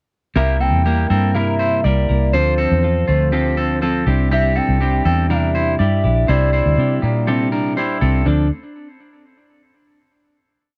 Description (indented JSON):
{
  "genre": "indie pop",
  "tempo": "122 BPM",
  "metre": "4/4",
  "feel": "straight",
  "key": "unclear",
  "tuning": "A4 = 441 Hz",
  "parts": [
    { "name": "hollow clarinet-like synth lead", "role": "melody", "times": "0.4-7.8 s", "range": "C5 to G5", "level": "-24 LUFS", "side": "equal", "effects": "chorus" },
    { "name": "semi-hollow electric guitar", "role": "accompaniment", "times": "0.4-8.5 s", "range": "C3 to Bb4", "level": "-25 LUFS", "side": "equal", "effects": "none" },
    { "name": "electric guitar at the edge of break-up", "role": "arpeggios", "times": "0.4-8.5 s", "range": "A3 to D5", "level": "-25 LUFS", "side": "equal", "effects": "tape echo" },
    { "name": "vintage muted fingered electric bass", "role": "bass", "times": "0.4-8.5 s", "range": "Bb1 to C3", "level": "-20 LUFS", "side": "equal", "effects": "none" }
  ],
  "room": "little or no reverb",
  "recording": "dry, close 1970s-style studio recording",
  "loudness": "-17 LUFS",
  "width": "mono",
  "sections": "0.4-8.3 bridge; 8.3-10.2 final chord",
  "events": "none",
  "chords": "0.4 C7; 2.3 Dm7; 4.1 Cadd9; 8.3 N.C."
}